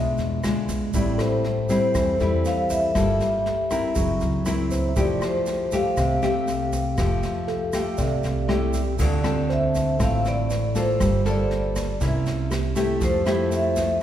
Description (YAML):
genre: bossa nova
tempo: 119 BPM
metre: 4/4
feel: straight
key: F major, D minor from 9.0 s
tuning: A4 = 440 Hz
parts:
  - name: vibraphone with medium mallets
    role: melody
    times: 0.0-14.0 s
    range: C5 to F5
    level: -26 LUFS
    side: equal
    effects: none
  - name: nylon-string guitar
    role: accompaniment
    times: 0.0-14.0 s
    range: A2 to Bb4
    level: -24 LUFS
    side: left 1 dB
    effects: none
  - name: upright bass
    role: bass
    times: 0.0-14.0 s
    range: F1 to F2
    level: -27 LUFS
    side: right 1 dB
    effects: none
  - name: jazz brush drum kit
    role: drums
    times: 0.2-13.8 s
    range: crash cymbal, kick drum, rim click, snare drum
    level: -30 LUFS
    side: right 1 dB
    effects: none
  - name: egg shaker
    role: percussion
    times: 0.2-14.0 s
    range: none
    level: -42 LUFS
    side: right 6 dB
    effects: none
  - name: mellow tine electric piano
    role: accompaniment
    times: 1.2-13.2 s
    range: G4 to Fb5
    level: -34 LUFS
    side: right 2 dB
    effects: medium stereo tremolo
room: wet church reverb, RT60 2.8 s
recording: recorded in a church or concert hall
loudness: -20 LUFS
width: side -11 dB against mid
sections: 0.0-9.0 A section; 9.0-14.0 B section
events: none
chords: 0.0 E7b9; 0.9 Am7; 3.0 Gm9; 4.0 Gb7#11; 5.0 Fmaj9; 9.0 Dm7; 11.0 Gm9; 12.0 C7b9; 13.0 Fmaj9